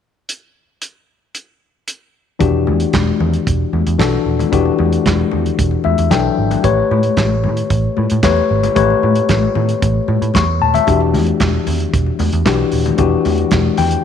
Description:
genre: disco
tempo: 113 BPM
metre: 4/4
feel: straight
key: E dorian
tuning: A4 = 440 Hz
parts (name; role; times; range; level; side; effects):
- warm soul drum kit; drums; 0.3-14.0 s; handclaps, hi-hat, kick drum, snare drum; -19 LUFS; right 2 dB; none
- tine electric piano; accompaniment; 2.4-14.0 s; E3 to C#6; -16 LUFS; left 8 dB; none
- vintage muted picked electric bass; bass; 2.4-13.9 s; D#1 to A2; -17 LUFS; right 2 dB; none
- congas; percussion; 2.4-13.9 s; none; -23 LUFS; left 8 dB; none
room: light reverb, studio ambience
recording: 1960s-style stereo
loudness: -13 LUFS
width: side -8 dB against mid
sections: 0.3-2.4 A section; 2.4-14.0 B section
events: tine electric piano fill 5.6-6.6, 13.5-14.0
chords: 0.3 N.C.; 2.4 Em9; 6.6 A9; 10.9 Em9

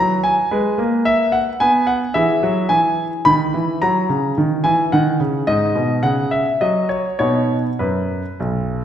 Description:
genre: classical-period piano sonatina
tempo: 108 BPM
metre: 3/4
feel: uneven beats, rubato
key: B major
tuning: A4 = 440 Hz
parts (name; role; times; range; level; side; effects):
- clear concert grand piano; solo; 0.0-8.8 s; B1 to B5; -15 LUFS; equal; none
room: wet recital hall reverb, RT60 1.4 s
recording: none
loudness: -15 LUFS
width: side -9 dB against mid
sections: 0.0-8.8 A section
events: none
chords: 0.0 B5; 0.5 G#m; 2.2 Emaj9; 3.8 F#7; 5.5 G#m; 6.0 N.C.; 7.2 B

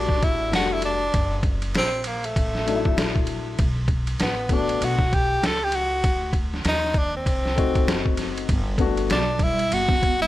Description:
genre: hip hop, jazz-hop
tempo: 98 BPM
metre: 4/4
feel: swing 61% on 16ths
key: unclear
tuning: A4 = 440 Hz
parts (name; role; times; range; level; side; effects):
- clear tenor saxophone; melody; 0.0-10.3 s; A3 to A4; -24 LUFS; equal; none
- dark grand piano; accompaniment; 0.0-9.2 s; F#3 to F#4; -27 LUFS; left 7 dB; none
- upright bass; bass; 0.0-10.3 s; F1 to Eb2; -29 LUFS; equal; none
- trip hop sampler-style drum kit; drums; 0.1-10.2 s; hi-hat, kick drum, ride cymbal, snare drum; -24 LUFS; equal; none
- vibraphone with soft mallets; second line; 9.1-10.3 s; F#3 to B3; -29 LUFS; right 8 dB; none
room: light reverb, small room reverb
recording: lossy compression artefacts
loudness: -20 LUFS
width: side -15 dB against mid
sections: 0.0-10.3 A section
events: none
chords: 0.0 Em11; 1.1 F#7alt; 3.6 Bm7; 6.0 D7b9; 8.5 Gmaj7

